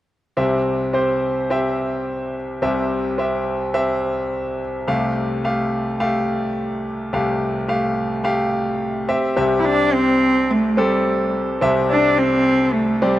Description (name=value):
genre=pop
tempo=107 BPM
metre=4/4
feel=straight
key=C major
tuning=A4 = 440 Hz
part: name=bright grand piano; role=accompaniment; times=0.4-13.2 s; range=C2 to F5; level=-19 LUFS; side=equal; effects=none
part: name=warm cello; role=melody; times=9.6-13.2 s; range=G3 to E4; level=-17 LUFS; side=equal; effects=none
room=light reverb, small room ambience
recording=rough home demo mix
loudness=-18 LUFS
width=side -14 dB against mid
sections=0.4-9.4 A section; 9.4-13.2 B section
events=none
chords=0.4 C; 4.9 Fadd9/C; 9.1 C